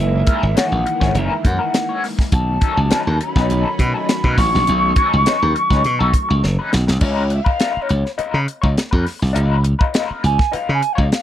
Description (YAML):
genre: funk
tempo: 102 BPM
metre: 4/4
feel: straight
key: unclear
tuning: A4 = 440 Hz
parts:
  - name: alto ocarina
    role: melody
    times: 0.0-11.2 s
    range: Db5 to Db6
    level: -20 LUFS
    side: equal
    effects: none
  - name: string machine, violins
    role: sustained chords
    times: 0.0-7.0 s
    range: Eb3 to Db4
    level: -26 LUFS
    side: equal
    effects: ensemble chorus
  - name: glassy slap bass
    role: bass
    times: 0.0-11.1 s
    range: Gb1 to Db3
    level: -17 LUFS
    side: equal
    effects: none
  - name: electric guitar through a small old amp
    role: accompaniment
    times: 0.3-11.1 s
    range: Db4 to Db5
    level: -24 LUFS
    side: left 5 dB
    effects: wah, tremolo
  - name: tight funk drum kit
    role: drums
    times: 0.3-11.2 s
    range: crash cymbal, hi-hat, kick drum, snare drum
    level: -18 LUFS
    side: equal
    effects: none
room: little or no reverb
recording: dry, close 1970s-style studio recording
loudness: -15 LUFS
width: side -11 dB against mid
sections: 0.0-7.0 A section; 7.0-11.2 B section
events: drum fill 6.4-7.0; ocarina solo 7.0-11.2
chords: 0.0 Gb9; 2.3 Cb9; 7.0 Db9